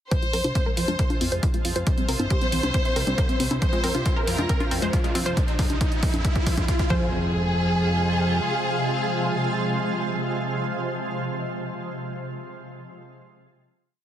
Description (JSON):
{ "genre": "uplifting trance", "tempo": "137 BPM", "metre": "4/4", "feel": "straight", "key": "F minor", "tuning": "A4 = 441 Hz", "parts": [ { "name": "wide unison pluck", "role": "melody", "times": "0.1-10.6 s", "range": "C4 to C5", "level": "-31 LUFS", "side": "right 1 dB", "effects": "cassette tape, sidechain pumping, tape echo" }, { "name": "warm studio violin section", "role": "second line", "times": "0.1-10.6 s", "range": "Ab4 to C5", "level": "-29 LUFS", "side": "equal", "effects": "ping-pong delay" }, { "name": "shimmering ambient pad", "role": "sustained chords", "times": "0.7-10.6 s", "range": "C3 to F4", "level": "-29 LUFS", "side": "equal", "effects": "chorus, built-in reverb, sidechain pumping" }, { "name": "analog pluck", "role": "arpeggios", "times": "0.1-7.3 s", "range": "E3 to F4", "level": "-32 LUFS", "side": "left 2 dB", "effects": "chorus, sidechain pumping, ping-pong delay" }, { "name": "electronic hi-hat and congas", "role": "drums", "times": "0.1-6.9 s", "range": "none", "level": "-30 LUFS", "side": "left 1 dB", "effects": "none" }, { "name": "electronic kick drum", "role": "drums", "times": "0.1-7.0 s", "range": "none", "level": "-24 LUFS", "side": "equal", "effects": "none" }, { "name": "riser and impact", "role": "sound effects", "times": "3.3-10.6 s", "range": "none", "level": "-34 LUFS", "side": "equal", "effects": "none" }, { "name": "fat analog bass", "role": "bass", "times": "0.3-8.4 s", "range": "G1 to F2", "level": "-26 LUFS", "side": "equal", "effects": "sidechain pumping" } ], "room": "light reverb, digital ambience", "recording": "heavily compressed radio sound, multiband compression", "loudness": "-21 LUFS", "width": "side -10 dB against mid", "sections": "0.1-7.1 build; 7.1-10.6 final hit", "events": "build-up 0.1-7.1; filter sweep on synth pluck 0.1-5.4; filter sweep on synth arpeggio sound 0.1-5.4; riser 3.3-7.1; drum fill 3.6-7.1", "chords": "0.1 Fm; 1.9 C; 3.6 Fm; 5.4 N.C.; 6.9 Fm", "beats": "| 0.12 0.55 0.99 1.43 | 1.87 2.31 2.74 3.18 | 3.62 4.06 4.50 4.93 | 5.37 5.81 6.25 6.68 | 7.12 7.56 8.00 8.44 | 8.87 9.31 9.75 10.19" }